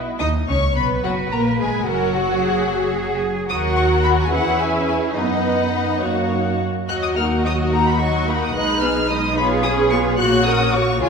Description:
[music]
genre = quick classical-period movement for string orchestra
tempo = 72 BPM (dotted quarters)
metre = 6/8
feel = rubato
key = B major, F# major from 6.9 s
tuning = A4 = 440 Hz
[part]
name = rich symphonic violin section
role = second line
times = 0.0-11.1 s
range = E4 to F#5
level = -24 LUFS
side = left 3 dB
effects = none
[part]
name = rich chamber violin section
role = melody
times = 0.2-11.1 s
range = F#5 to F#6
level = -24 LUFS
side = left 4 dB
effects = none
[part]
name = rich chamber viola section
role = accompaniment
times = 0.2-11.1 s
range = F#3 to A#4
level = -22 LUFS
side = equal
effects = none
[part]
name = rich chamber double bass section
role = bass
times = 0.2-11.1 s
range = F#1 to F#2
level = -23 LUFS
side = right 3 dB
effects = none
[part]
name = rich studio cello section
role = bass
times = 1.0-11.1 s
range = D#4 to B4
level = -25 LUFS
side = right 3 dB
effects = none
[sound]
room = wet scoring stage reverb, RT60 1.6 s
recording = heard from further back in the room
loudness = -16 LUFS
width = side -5 dB against mid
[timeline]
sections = 0.2-11.1 A section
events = none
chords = 0.2 B; 1.9 F#; 3.5 D#m; 4.3 E; 5.2 B/F#; 6.0 F#; 6.9 D#m; 8.5 G#m/B; 9.4 C#7/B; 10.2 F#/A#

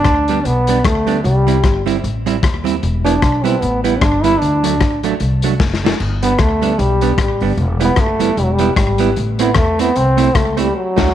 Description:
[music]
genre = ska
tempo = 151 BPM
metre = 4/4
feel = swing 58% on 8ths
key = G major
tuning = A4 = 440 Hz
[part]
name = warm trombone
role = melody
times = 0.0-11.1 s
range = F#3 to E4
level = -17 LUFS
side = equal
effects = none
[part]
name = crunchy breakbeat drum kit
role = drums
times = 0.0-11.1 s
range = crash cymbal, hi-hat, kick drum, rim click, snare drum, splash cymbal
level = -18 LUFS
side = left 2 dB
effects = slapback echo
[part]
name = upright bass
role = bass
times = 0.1-11.1 s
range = E1 to E2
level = -18 LUFS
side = equal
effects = none
[part]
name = hollow-body jazz guitar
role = accompaniment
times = 0.3-11.1 s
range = F#3 to F#4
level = -20 LUFS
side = right 10 dB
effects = slapback echo
[sound]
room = light reverb, small room ambience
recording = 1960s-style stereo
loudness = -13 LUFS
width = side -11 dB against mid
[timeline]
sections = 0.0-11.1 A section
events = drum fill 5.6-6.0; band accent 10.7-11.1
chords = 0.0 G; 1.2 C; 2.8 Em; 4.4 D; 6.0 G; 7.6 Em; 9.2 Am

